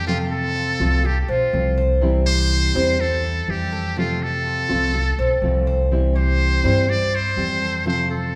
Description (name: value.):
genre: latin.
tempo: 123 BPM.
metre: 4/4.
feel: straight.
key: C major.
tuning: A4 = 440 Hz.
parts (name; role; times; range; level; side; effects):
trumpet with metal mute; melody; 0.0-8.4 s; F4 to D5; -26 LUFS; equal; none.
nylon-string guitar; accompaniment; 0.0-8.4 s; C3 to F4; -28 LUFS; equal; none.
Cuban tres; arpeggios; 0.0-8.3 s; A3 to C5; -27 LUFS; equal; none.
upright bass; bass; 0.0-8.4 s; B1 to G2; -24 LUFS; equal; none.
room: wet recital hall reverb, RT60 1.7 s.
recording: recorded in a church or concert hall.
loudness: -20 LUFS.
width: mono.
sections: 0.0-8.4 A section.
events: none.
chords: 0.1 F; 2.0 C; 4.0 F; 5.9 C.